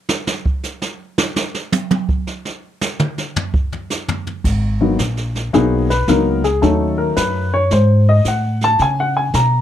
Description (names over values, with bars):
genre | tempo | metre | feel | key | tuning
jazz piano trio | 110 BPM | 4/4 | swing 67% on 8ths | G# minor from 4.4 s | A4 = 440 Hz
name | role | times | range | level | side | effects
jazz brush drum kit | drums | 0.1-9.6 s | brushed snare drum, crash cymbal, hi-hat, kick drum, snare drum, toms | -20 LUFS | right 2 dB | none
upright bass | bass | 4.4-9.6 s | G#1 to C#3 | -17 LUFS | equal | none
dark baby grand piano | melody | 4.8-9.6 s | F#3 to A#5 | -16 LUFS | left 2 dB | none
room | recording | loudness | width
moderate club reverb, RT60 0.7 s | none | -15 LUFS | side -10 dB against mid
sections
0.0-4.4 A section; 4.4-9.6 B section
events
drum solo 0.0-4.4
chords
0.0 N.C.; 4.4 G#m7; 6.6 D#m7b5; 7.7 G#7b9; 8.8 C#7(no3)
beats
| 0.09 0.64 1.18 1.73 | 2.27 2.81 3.36 3.90 | 4.45 4.99 5.53 6.08 | 6.62 7.17 7.71 8.26 | 8.80 9.34